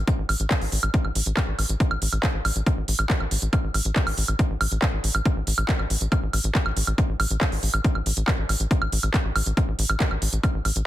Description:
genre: psychedelic trance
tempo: 139 BPM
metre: 4/4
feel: straight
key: unclear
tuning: A4 = 436 Hz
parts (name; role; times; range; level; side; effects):
- tight sequencer bass; bass; 0.0-10.8 s; A1; -25 LUFS; equal; none
- electronic kick drum; drums; 0.1-10.5 s; none; -22 LUFS; equal; none
- techno drum kit; drums; 0.1-10.8 s; handclaps, hi-hat, woodblock; -26 LUFS; right 2 dB; none
room: little or no reverb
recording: dense, heavily limited modern master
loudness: -21 LUFS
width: side -14 dB against mid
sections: 0.0-10.9 A section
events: none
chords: none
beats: | 0.07 0.51 0.94 1.37 | 1.80 2.23 2.67 3.10 | 3.53 3.96 4.39 4.82 | 5.25 5.69 6.12 6.55 | 6.98 7.41 7.84 8.28 | 8.71 9.14 9.57 10.00 | 10.44

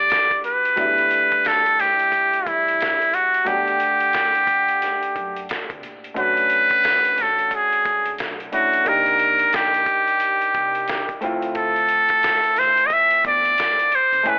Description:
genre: hip hop, jazz-hop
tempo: 89 BPM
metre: 4/4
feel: swing 61% on 16ths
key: unclear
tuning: A4 = 442 Hz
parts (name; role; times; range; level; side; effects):
- trumpet with metal mute; melody; 0.0-14.4 s; E4 to E5; -16 LUFS; equal; cassette tape
- warm upright piano; accompaniment; 0.0-14.4 s; F#3 to G#5; -29 LUFS; equal; cassette tape
- upright bass; bass; 0.0-14.4 s; F1 to G2; -41 LUFS; equal; tube saturation
- trip hop sampler-style drum kit; drums; 0.1-14.4 s; hi-hat, kick drum, snare drum; -30 LUFS; equal; cassette tape
room: light reverb, studio ambience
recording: home recording on cassette, telephone sound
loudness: -16 LUFS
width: side -33 dB against mid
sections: 0.0-6.2 A section; 6.2-14.4 B section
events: none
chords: 0.0 Em11; 6.2 Bm9; 8.9 Cm9; 11.2 Dm9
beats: 0.10 | 0.78 1.45 2.12 2.80 | 3.47 4.15 4.82 5.50 | 6.17 6.84 7.52 8.19 | 8.87 9.54 10.21 10.89 | 11.56 12.24 12.91 13.59 | 14.26

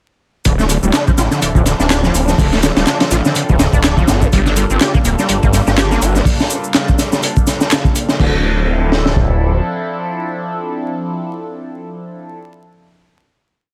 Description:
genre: breakbeat, breaks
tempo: 124 BPM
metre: 4/4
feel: swing 57% on 16ths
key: D minor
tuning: A4 = 440 Hz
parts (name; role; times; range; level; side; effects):
- phased analog pad; sustained chords; 0.8-12.4 s; F3 to A4; -24 LUFS; equal; phaser, chorus, sidechain pumping
- overdriven acid bass; riff; 0.4-8.4 s; D3 to G4; -22 LUFS; equal; distortion, ensemble chorus, cassette tape, delay
- phased detuned saw bass; bass; 0.5-9.6 s; D1 to A1; -18 LUFS; equal; phaser
- crunchy breakbeat drum kit; drums; 0.5-9.3 s; crash cymbal, hi-hat, kick drum, snare drum; -17 LUFS; equal; none
- electronic shaker and handclaps; drums; 0.5-8.2 s; none; -25 LUFS; equal; none
room: small room ambience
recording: vinyl crackle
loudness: -15 LUFS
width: mono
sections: 0.5-8.2 drop; 8.2-12.1 final chord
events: drop 0.5-8.2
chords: 0.5 Dm9; 4.1 Gm9; 8.2 Dm9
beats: | 0.45 0.94 1.42 1.90 | 2.39 2.87 3.35 3.84 | 4.32 4.81 5.29 5.77 | 6.26 6.74 7.23 7.71 | 8.19 8.68 9.16 9.64 | 10.13 10.61 11.10 11.58

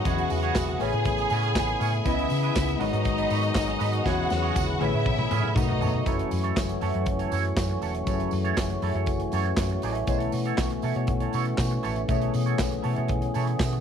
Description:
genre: disco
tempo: 120 BPM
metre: 4/4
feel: straight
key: unclear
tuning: A4 = 440 Hz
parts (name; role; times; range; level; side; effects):
- bright studio string section; second line; 0.0-6.1 s; D#4 to G#5; -29 LUFS; equal; none
- clean electric guitar; accompaniment; 0.0-13.8 s; C#4 to D#5; -34 LUFS; right 14 dB; wah
- mellow tine electric piano; accompaniment; 0.0-13.8 s; B2 to C#5; -32 LUFS; left 12 dB; phaser
- percussive tonewheel organ; sustained chords; 0.0-13.8 s; C#3 to G#4; -31 LUFS; equal; overdrive, chorus vibrato, lush chorus
- hollow-body short-scale fingered electric bass; bass; 0.1-13.8 s; E1 to C#3; -29 LUFS; equal; none
- modern studio drum kit; drums; 0.1-13.8 s; handclaps, hi-hat, kick drum, snare drum, toms; -29 LUFS; equal; none
- tambourine; percussion; 0.1-13.7 s; none; -45 LUFS; right 15 dB; none
room: light reverb, small room ambience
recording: 1960s-style stereo with parts hard left and right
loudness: -23 LUFS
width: side -8 dB against mid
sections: 0.0-6.1 A section; 6.1-13.8 B section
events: drum fill 4.1-6.1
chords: 0.1 E69; 0.8 Amaj9; 2.1 C#m9; 2.8 G#m7; 4.1 E69; 4.8 Amaj9; 5.6 B7; 6.1 F#m7; 10.1 B9sus4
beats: | 0.06 0.56 1.06 1.56 | 2.06 2.56 3.06 3.56 | 4.06 4.56 5.06 5.56 | 6.06 6.56 7.06 7.57 | 8.07 8.57 9.07 9.57 | 10.08 10.58 11.08 11.59 | 12.09 12.59 13.10 13.60

